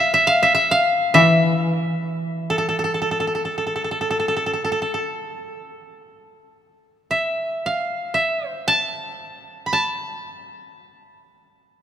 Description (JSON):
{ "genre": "japanese traditional, Japanese chamber music", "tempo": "free time", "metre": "none", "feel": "none", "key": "unclear", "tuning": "A4 = 440 Hz", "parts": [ { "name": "koto", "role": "melody", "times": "0.0-11.7 s", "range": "A4 to B5", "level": "-19 LUFS", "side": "equal", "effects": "none" }, { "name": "koto", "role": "accompaniment", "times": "1.1-4.2 s", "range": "E3", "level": "-20 LUFS", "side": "left 1 dB", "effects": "none" } ], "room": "moderate church reverb, RT60 3.6 s", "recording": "minimal, uncompressed stereo recording", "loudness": "-18 LUFS", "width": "side -10 dB against mid", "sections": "0.0-6.2 A section; 6.2-11.8 A section", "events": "none", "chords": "none" }